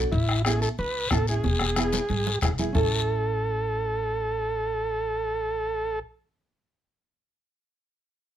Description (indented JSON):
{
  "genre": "latin, cumbia",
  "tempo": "182 BPM",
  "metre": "4/4",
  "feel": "straight",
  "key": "A major",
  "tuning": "A4 = 440 Hz",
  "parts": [
    { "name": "nylon-string guitar", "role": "accompaniment", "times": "0.0-6.0 s", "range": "B3 to A4", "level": "-31 LUFS", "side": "right 2 dB", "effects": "none" },
    { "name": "upright bass", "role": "bass", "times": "0.0-6.0 s", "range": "E1 to C#2", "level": "-29 LUFS", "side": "equal", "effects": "none" },
    { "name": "overdriven combo organ", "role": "melody", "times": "0.1-6.0 s", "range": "E4 to B4", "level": "-28 LUFS", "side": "right 1 dB", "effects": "none" },
    { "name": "bombo", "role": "percussion", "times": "0.1-2.8 s", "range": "none", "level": "-27 LUFS", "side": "left 2 dB", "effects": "none" },
    { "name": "congas", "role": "percussion", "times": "0.1-2.8 s", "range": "none", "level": "-33 LUFS", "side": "right 4 dB", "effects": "none" },
    { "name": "guiro", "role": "percussion", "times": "0.1-2.8 s", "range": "none", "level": "-32 LUFS", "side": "left 6 dB", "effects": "none" }
  ],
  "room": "little or no reverb",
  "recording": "close, detailed microphones",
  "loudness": "-24 LUFS",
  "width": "side -10 dB against mid",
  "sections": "0.0-2.7 A section; 2.7-5.4 B section",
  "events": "drum fill 1.4-2.7",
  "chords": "0.1 A; 1.4 E; 2.7 A",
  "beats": "| 0.12 0.44 0.77 1.10 | 1.43 1.76 2.09 2.41 | 2.74 3.07 3.40 3.73 | 4.06 4.39 4.72 5.04"
}